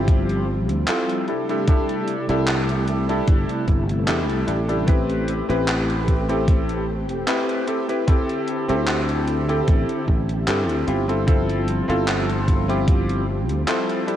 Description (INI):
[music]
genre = vaporwave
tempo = 75 BPM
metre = 4/4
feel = swing 54% on 16ths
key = unclear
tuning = A4 = 442 Hz
[part]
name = bright electric grand piano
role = accompaniment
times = 0.0-14.2 s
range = C4 to B4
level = -24 LUFS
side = left 1 dB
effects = wide subtle chorus, vintage 12-bit sampler grit, tape echo
[part]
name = soft string machine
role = sustained chords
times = 0.0-14.2 s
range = C3 to G4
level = -27 LUFS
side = equal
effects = ensemble chorus
[part]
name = sustaining fretless electric bass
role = bass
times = 0.0-13.6 s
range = E1 to G2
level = -24 LUFS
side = equal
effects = tube saturation
[part]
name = electronic kick drum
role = drums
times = 0.1-13.1 s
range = none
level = -18 LUFS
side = equal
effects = overdrive
[part]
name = gated 80s digital drum machine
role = drums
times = 0.1-14.2 s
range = handclaps, hi-hat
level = -28 LUFS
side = equal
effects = gated reverb, overdrive
[sound]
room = light reverb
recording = cassette tape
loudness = -19 LUFS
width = side -11 dB against mid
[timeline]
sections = 0.0-14.2 A section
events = none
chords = 0.0 G13sus4; 1.3 C6; 4.9 Am9; 8.1 D9sus4; 10.9 G13sus4